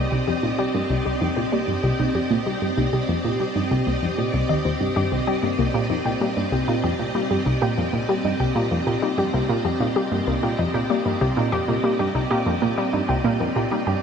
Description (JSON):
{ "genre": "ambient, sequencer-driven space music", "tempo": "96 BPM", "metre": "4/4", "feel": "straight", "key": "C minor", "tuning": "A4 = 436 Hz", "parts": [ { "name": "string machine, full ensemble", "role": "sustained chords", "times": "0.0-14.0 s", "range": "C4 to Eb5", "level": "-25 LUFS", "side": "equal", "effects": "ensemble chorus" }, { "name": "warbly dusty pluck", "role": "arpeggios", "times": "0.0-14.0 s", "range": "Bb3 to Eb5", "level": "-26 LUFS", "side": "moving between left 7 dB and right 3 dB", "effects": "chorus, auto-pan, ping-pong delay" }, { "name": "analog pluck", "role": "riff", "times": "0.0-14.0 s", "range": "C2 to G3", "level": "-23 LUFS", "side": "equal", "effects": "chorus, ping-pong delay" } ], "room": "moderate shimmer reverb, RT60 8.4 s", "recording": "dark, warm production", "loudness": "-20 LUFS", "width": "side -7 dB against mid", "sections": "0.0-14.0 A section", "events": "none", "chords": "0.0 Cm7" }